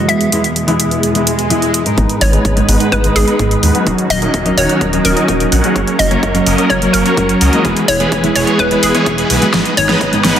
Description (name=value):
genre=EDM, festival progressive house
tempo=127 BPM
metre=4/4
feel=straight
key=G# minor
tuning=A4 = 439 Hz
part: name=hollow square pluck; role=melody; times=0.0-10.4 s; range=G#4 to E5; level=-18 LUFS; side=left 1 dB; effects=chorus, vintage 12-bit sampler grit, tape echo
part: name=mellow electric guitar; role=accompaniment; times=0.0-10.4 s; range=G#2 to A#4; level=-17 LUFS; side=equal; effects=wide subtle chorus, sidechain pumping, tape echo
part: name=dark studio string section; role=sustained chords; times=0.0-10.4 s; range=E2 to B4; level=-21 LUFS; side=right 1 dB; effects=sidechain pumping
part: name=big-room dance drum kit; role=drums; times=0.1-10.4 s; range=hi-hat, snare drum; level=-18 LUFS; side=right 1 dB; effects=overdrive
part: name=swell and riser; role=sound effects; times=1.2-2.0, 9.5-10.4 s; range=none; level=-23 LUFS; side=right 2 dB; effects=none
part: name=supersaw chords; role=riff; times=2.0-10.4 s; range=E3 to F#5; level=-16 LUFS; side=equal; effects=sidechain pumping, low-pass filter, tape echo
part: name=wide detuned saw bass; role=bass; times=2.0-10.3 s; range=D#1 to D#2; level=-17 LUFS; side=equal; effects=chorus, sidechain pumping
part: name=electronic kick drum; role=drums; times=2.0-10.1 s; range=none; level=-20 LUFS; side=equal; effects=high-pass filter on kick
room=moderate lush hall reverb, RT60 1.8 s, digital ambience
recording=dense, heavily limited modern master, high-pass filter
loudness=-10 LUFS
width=side -9 dB against mid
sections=0.0-2.0 A section; 2.0-10.4 B section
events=swell 1.2-2.0; build-up 2.0-10.4; filter sweep on supersaw synth 2.0-10.4; filter sweep 2.0-10.4; drum fill 9.5-10.4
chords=0.1 E; 2.0 G#m; 3.9 D#m7; 5.8 F#; 7.6 E; 9.5 G#m